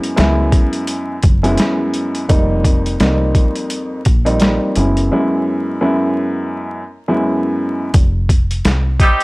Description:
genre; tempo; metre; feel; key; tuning
hip hop, boom-bap hip-hop; 85 BPM; 4/4; swing 58% on 16ths; unclear; A4 = 440 Hz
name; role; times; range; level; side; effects
dark upright piano; accompaniment; 0.0-7.9 s; F2 to Fb4; -16 LUFS; equal; high-pass filter, low-pass filter
boom bap sampler-style drum kit; drums; 0.0-9.2 s; hi-hat, kick drum, snare drum; -14 LUFS; equal; overdrive
deep dub fingered electric bass; bass; 0.2-9.0 s; F1 to Db2; -16 LUFS; equal; tube saturation
clear horn section; stabs; 9.0-9.2 s; G3 to G4; -13 LUFS; right 1 dB; high-pass filter, low-pass filter
room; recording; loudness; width
studio reverb; dry, gritty hardware recording, vinyl crackle; -13 LUFS; side -23 dB against mid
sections
0.0-7.9 A section; 7.9-9.2 B section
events
break 5.1-7.9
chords
0.0 Gb9sus4; 2.3 F9sus4; 4.8 Gb9sus4; 7.9 F7(no3)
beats
0.18 0.88 1.59 | 2.29 3.00 3.71 4.41 | 5.12 5.82 6.53 7.24 | 7.94 8.65

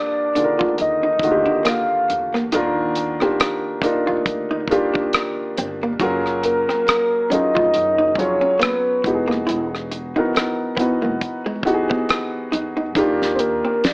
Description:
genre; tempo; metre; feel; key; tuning
R&B, neo-soul; 69 BPM; 4/4; swing 57% on 16ths; unclear; A4 = 443 Hz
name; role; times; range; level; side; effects
soft octave-layered synth lead; melody; 0.0-13.9 s; Bb4 to F5; -18 LUFS; equal; chorus, slapback echo
warm upright piano; accompaniment; 0.0-13.9 s; D3 to Db5; -21 LUFS; equal; plate reverb
archtop guitar, miked and amplified; second line; 0.4-13.9 s; G#3 to Gb4; -24 LUFS; right 1 dB; slapback echo
upright bass; bass; 0.4-13.6 s; E1 to Fb2; -33 LUFS; equal; none
damped 70s drum kit; drums; 0.4-13.9 s; hi-hat, kick drum, rim click, snare drum; -22 LUFS; equal; none
room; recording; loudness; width
moderate studio reverb, RT60 0.8 s; AM radio sound; -17 LUFS; side -28 dB against mid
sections
0.0-13.9 A section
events
none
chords
0.0 Ebmaj9; 6.0 Gbmaj9; 9.0 Emaj9; 13.0 Ebmaj9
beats
0.78 1.65 | 2.52 3.39 4.26 5.13 | 6.00 6.87 7.74 8.60 | 9.47 10.34 11.21 12.08 | 12.95 13.82

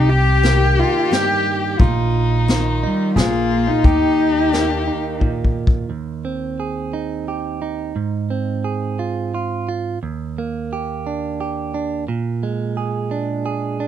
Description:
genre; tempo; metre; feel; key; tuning
acoustic folk-pop ballad; 88 BPM; 3/4; straight; Eb major; A4 = 440 Hz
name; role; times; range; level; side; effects
warm cello; melody; 0.0-5.2 s; G3 to G4; -18 LUFS; left 2 dB; none
dark violin; second line; 0.0-5.6 s; Eb4 to G4; -24 LUFS; left 8 dB; none
direct-recorded clean electric guitar; accompaniment; 0.0-13.9 s; Eb2 to Ab4; -22 LUFS; right 5 dB; none
upright bass; bass; 0.0-4.9 s; Bb1 to Eb2; -18 LUFS; equal; none
vintage brush drum kit; drums; 0.4-5.8 s; hi-hat, kick drum, snare drum; -18 LUFS; left 1 dB; none
room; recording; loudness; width
light reverb; dark, warm production; -17 LUFS; side -10 dB against mid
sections
0.0-5.9 A section; 5.9-13.9 B section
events
drum fill 5.2-5.9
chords
0.0 Cm7; 1.8 Bbsus4; 3.2 Bb5; 3.8 Eb; 5.9 Eb6; 8.0 Ab6; 10.0 Ebmaj7; 12.1 Bb7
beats
0.43 1.11 | 1.79 2.48 3.16 | 3.84 4.53 5.21 | 5.90 6.58 7.27 | 7.96 8.64 9.33 | 10.02 10.70 11.39 | 12.07 12.76 13.44

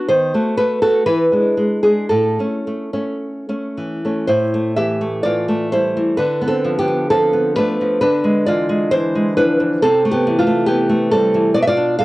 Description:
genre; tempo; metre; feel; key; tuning
romantic piece for solo classical guitar; 52-70 BPM; 2/4; rubato; A major, A minor from 4.3 s; A4 = 441 Hz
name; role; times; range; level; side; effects
nylon-string guitar; solo; 0.0-12.0 s; A2 to F5; -14 LUFS; equal; cassette tape
room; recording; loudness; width
wet studio reverb, RT60 0.5 s; home recording on cassette; -14 LUFS; side -19 dB against mid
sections
0.0-4.3 A section; 4.3-12.0 B section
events
none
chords
0.1 D#dim7; 1.0 E7; 2.1 A; 4.3 A5; 6.2 Bdim/D; 8.0 E7/D; 9.8 Am/C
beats
| 0.08 1.04 | 2.10 3.20 | 4.29 5.23 | 6.17 7.12 | 8.02 8.93 | 9.83 10.70 | 11.56

